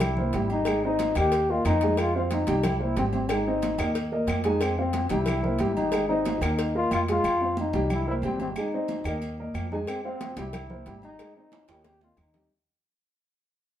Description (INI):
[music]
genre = latin, salsa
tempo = 182 BPM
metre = 4/4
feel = straight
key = F minor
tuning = A4 = 439 Hz
[part]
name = mellow trombone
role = melody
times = 0.0-12.5 s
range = C4 to G4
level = -28 LUFS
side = left 2 dB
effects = none
[part]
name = dark upright piano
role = accompaniment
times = 0.0-12.5 s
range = G3 to Ab5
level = -29 LUFS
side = right 1 dB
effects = none
[part]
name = upright bass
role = bass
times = 0.0-12.5 s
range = Ab1 to F2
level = -31 LUFS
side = equal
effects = none
[part]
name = agogo bells and timbales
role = percussion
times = 0.0-12.4 s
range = none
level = -37 LUFS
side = right 3 dB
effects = none
[part]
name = claves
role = percussion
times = 0.0-12.3 s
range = none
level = -40 LUFS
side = left 2 dB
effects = none
[part]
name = congas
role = percussion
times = 0.0-12.4 s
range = none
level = -35 LUFS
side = right 2 dB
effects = none
[part]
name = cowbell and bongos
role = percussion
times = 0.0-7.2, 9.9-12.5 s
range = none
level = -36 LUFS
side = left 5 dB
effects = none
[sound]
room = moderate studio reverb, RT60 0.8 s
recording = band playing live in one room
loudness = -24 LUFS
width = side -11 dB against mid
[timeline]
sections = 0.0-7.2 A section; 7.2-12.5 B section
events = fade-out 7.2-12.5; drum fill 11.5-12.5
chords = 0.0 C7; 0.7 Ab; 1.3 Eb5; 2.0 Fm; 2.6 C5; 3.3 Ab; 4.0 Eb5; 4.6 Fm; 5.3 C7; 5.9 Ab; 6.6 Eb5; 7.2 F5; 7.9 C5; 8.6 Ab; 9.2 Eb5; 9.9 Fm; 10.5 C7; 11.2 Ab; 11.8 Eb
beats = 0.01 0.34 | 0.67 1.00 1.32 1.65 | 1.98 2.31 2.64 2.97 | 3.30 3.62 3.95 4.28 | 4.61 4.94 5.27 5.60 | 5.93 6.26 6.59 6.92 | 7.24 7.57 7.90 8.23 | 8.56 8.89 9.22 9.55 | 9.88 10.21 10.53 10.86 | 11.19 11.52 11.85 12.18